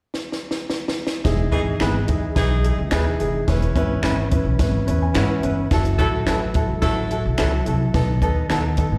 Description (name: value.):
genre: uptempo 1960s-style soul.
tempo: 108 BPM.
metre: 4/4.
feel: straight.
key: E major.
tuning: A4 = 436 Hz.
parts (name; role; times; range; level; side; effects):
compact cocktail drum kit; drums; 0.1-8.9 s; hi-hat, kick drum, snare drum; -26 LUFS; equal; slapback echo.
warm upright piano; accompaniment; 1.2-9.0 s; B3 to B5; -28 LUFS; equal; slapback echo.
upright bass; bass; 1.2-9.0 s; E1 to A2; -24 LUFS; equal; none.
mellow tonewheel organ; sustained chords; 1.3-9.0 s; D#3 to B4; -30 LUFS; equal; chorus vibrato, lush chorus.
bright saxophone section; second line; 1.5-7.2 s; E3 to A4; -31 LUFS; equal; slapback echo.
electric guitar through a small old amp; stabs; 1.8-8.6 s; F#3 to B4; -31 LUFS; equal; slapback echo.
finger snap; percussion; 1.8-8.6 s; none; -34 LUFS; equal; slapback echo.
room: light reverb, small room ambience.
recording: live gig heard through the venue's PA, recital hall reverb.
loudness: -21 LUFS.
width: mono.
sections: 0.0-1.3 A section; 1.3-9.0 B section.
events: drum fill 0.1-1.3; upright piano fill 4.6-5.7.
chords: 0.0 N.C.; 1.3 Emaj7; 3.5 C#m7/E; 5.7 F#m7; 7.9 B7.